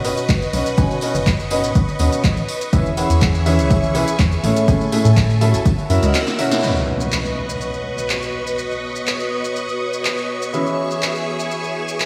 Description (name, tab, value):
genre	piano house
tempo	123 BPM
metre	4/4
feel	straight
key	B mixolydian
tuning	A4 = 440 Hz
part	string machine, violins	sustained chords	0.0-12.1 s	G#4 to E6	-28 LUFS	equal	ensemble chorus, sidechain pumping
part	clear baby grand piano	riff	0.0-12.1 s	A2 to G#5	-24 LUFS	equal	subtle chorus, sidechain pumping, tape echo
part	organ-like FM bass	bass	0.0-6.1 s	E1 to A2	-20 LUFS	equal	sidechain pumping
part	punchy analog drum machine	drums	0.0-12.1 s	handclaps, hi-hat, shaker, snare drum	-28 LUFS	equal	none
part	tambourine	percussion	0.1-6.6 s	none	-38 LUFS	equal	none
part	electronic kick drum	drums	0.3-5.8 s	none	-19 LUFS	equal	none
part	impact	sound effects	6.6-8.6 s	none	-29 LUFS	equal	none
part	ethereal airy pad	texture	7.6-12.1 s	B3 to D#6	-31 LUFS	equal	ensemble chorus, built-in reverb, sidechain pumping
room	moderate lush hall reverb, RT60 2.4 s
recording	dreamy mix soaked in reverb, small room ambience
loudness	-19 LUFS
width	mono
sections	0.0-6.6 A section; 6.6-12.1 B section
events	drum fill 6.1-6.6; band accent 6.5; impact 6.6-8.6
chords	0.0 Badd9; 2.7 E6; 4.4 Amaj7; 5.7 F#7; 6.6 Badd9; 10.5 E6